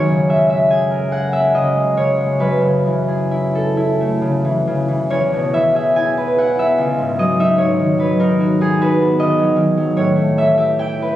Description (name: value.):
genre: classical, solo harp piece.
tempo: 65-77 BPM.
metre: 3/4.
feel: rubato.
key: unclear.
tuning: A4 = 440 Hz.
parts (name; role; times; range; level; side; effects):
concert harp; solo; 0.0-11.2 s; C#2 to G#5; -14 LUFS; equal; none.
room: light reverb.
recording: recorded on a phone in the room, club reverb, compression.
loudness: -14 LUFS.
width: side -13 dB against mid.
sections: 0.0-11.2 A section.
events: none.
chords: 0.0 F#add9; 2.4 F#m11; 5.1 E6; 6.8 C#m11; 7.6 G#m7; 10.0 A9.